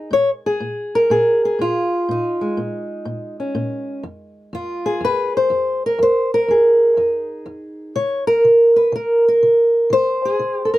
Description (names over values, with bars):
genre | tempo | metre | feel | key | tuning
acoustic country blues, solo or duo | 123 BPM | 4/4 | swing 66% on 8ths | F minor | A4 = 440 Hz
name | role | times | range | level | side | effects
fingerpicked old ladder-braced acoustic guitar | solo | 0.0-10.8 s | F2 to Db5 | -15 LUFS | equal | none
room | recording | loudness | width
light reverb | none | -15 LUFS | side -16 dB against mid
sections
0.0-10.8 A section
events
none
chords
0.1 Bbm7; 4.0 Fm7; 8.0 N.C.